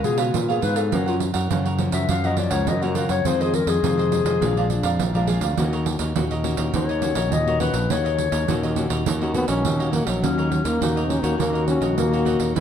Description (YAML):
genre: samba and choro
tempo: 103 BPM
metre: 4/4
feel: straight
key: Eb minor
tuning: A4 = 441 Hz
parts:
  - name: dark clarinet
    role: second line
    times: 0.0-12.6 s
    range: Db4 to F5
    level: -25 LUFS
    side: left 7 dB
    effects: none
  - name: cavaquinho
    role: accompaniment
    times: 0.0-12.6 s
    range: Fb4 to Gb5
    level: -30 LUFS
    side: right 6 dB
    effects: none
  - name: nylon-string guitar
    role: accompaniment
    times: 0.0-12.6 s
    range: F2 to Gb4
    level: -28 LUFS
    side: left 4 dB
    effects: none
  - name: growling fingered electric bass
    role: bass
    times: 0.0-12.6 s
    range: Bb1 to Cb3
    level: -24 LUFS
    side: equal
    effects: overdrive
  - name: pandeiro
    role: percussion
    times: 0.0-12.6 s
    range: none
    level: -27 LUFS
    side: right 9 dB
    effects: none
  - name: breathy trombone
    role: melody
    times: 9.3-12.6 s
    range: Gb3 to Eb4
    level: -24 LUFS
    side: right 1 dB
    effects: none
room: moderate large studio reverb, RT60 1.2 s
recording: dark, warm production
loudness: -19 LUFS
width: side -8 dB against mid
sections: 0.0-10.2 A section; 10.2-12.6 B section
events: clarinet solo 0.0-10.2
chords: 0.0 Db7; 0.9 Gbmaj7; 3.3 Fm7; 4.4 Bb7; 5.6 Ebm7